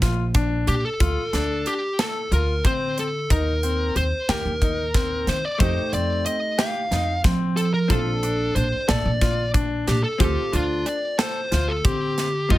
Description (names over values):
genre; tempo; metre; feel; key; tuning
progressive instrumental, band music in an uneven meter; 183 BPM (eighths); 7/8; straight; unclear; A4 = 440 Hz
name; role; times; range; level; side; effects
clear baby grand piano; arpeggios; 0.0-12.6 s; C4 to A4; -29 LUFS; left 5 dB; none
upright bass; bass; 0.0-12.6 s; Bb1 to F3; -24 LUFS; right 1 dB; none
tight metal drum kit; drums; 0.0-12.6 s; hi-hat, kick drum, snare drum; -24 LUFS; equal; none
fuzz lead guitar; melody; 0.7-12.6 s; F4 to F5; -25 LUFS; equal; distortion
archtop guitar, miked and amplified; accompaniment; 5.6-12.6 s; A3 to A4; -32 LUFS; right 1 dB; double-tracked left and right
room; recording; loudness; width
light reverb; none; -20 LUFS; side -16 dB against mid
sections
0.0-12.6 A section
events
none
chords
0.0 Bb; 1.0 Dm7; 3.3 Eb5; 5.6 F9; 7.9 Bbmaj7; 10.2 Dm7